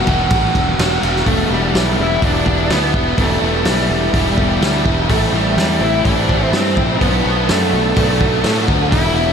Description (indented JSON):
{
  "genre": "rock, shoegaze and dream pop",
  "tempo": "125 BPM",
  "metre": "4/4",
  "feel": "straight",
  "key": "E minor",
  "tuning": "A4 = 439 Hz",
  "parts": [
    { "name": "biting overdriven guitar", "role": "riff", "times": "0.0-9.3 s", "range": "E2 to G4", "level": "-17 LUFS", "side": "equal", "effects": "wide subtle chorus" },
    { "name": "fuzz fingered electric bass", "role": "bass", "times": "0.0-9.3 s", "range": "E1 to A2", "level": "-19 LUFS", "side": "equal", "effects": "overdrive" },
    { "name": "loose indie drum kit", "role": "drums", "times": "0.1-9.0 s", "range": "hi-hat, kick drum, ride cymbal, snare drum", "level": "-19 LUFS", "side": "equal", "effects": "none" },
    { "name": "octave-fuzz lead guitar", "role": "melody", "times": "1.3-9.3 s", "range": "G3 to E4", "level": "-20 LUFS", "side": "equal", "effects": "distortion, ping-pong delay" }
  ],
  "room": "wet huge ambient reverb, RT60 9.4 s",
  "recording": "dreamy mix soaked in reverb",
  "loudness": "-13 LUFS",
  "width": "side -7 dB against mid",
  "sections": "0.0-1.3 A section; 1.3-9.3 B section",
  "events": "none",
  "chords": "0.0 Em; 1.3 Em7; 5.1 Am7; 7.0 Bm7"
}